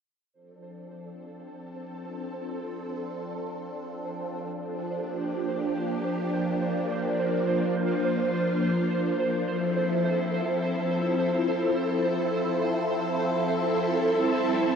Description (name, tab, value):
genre	ambient, sequencer-driven space music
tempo	free time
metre	none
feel	none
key	D minor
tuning	A4 = 440 Hz
part	phased string machine	sustained chords	0.3-14.8 s	F3 to A4	-27 LUFS	left 1 dB	ensemble chorus, phaser
part	pulsing gated texture	texture	0.3-14.8 s	C5	-31 LUFS	right 3 dB	chorus, built-in reverb
room	wet huge ambient reverb, RT60 8.4 s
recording	worn, warbling old tape, cassette tape, warbly pitch drift, nothing above 10.8 kHz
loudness	-25 LUFS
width	side -7 dB against mid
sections	0.3-14.8 A section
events	fade-in on string machine 0.3-14.8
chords	0.3 Dm7; 4.9 Gm7; 9.5 Fmaj7; 14.0 Am7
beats	free time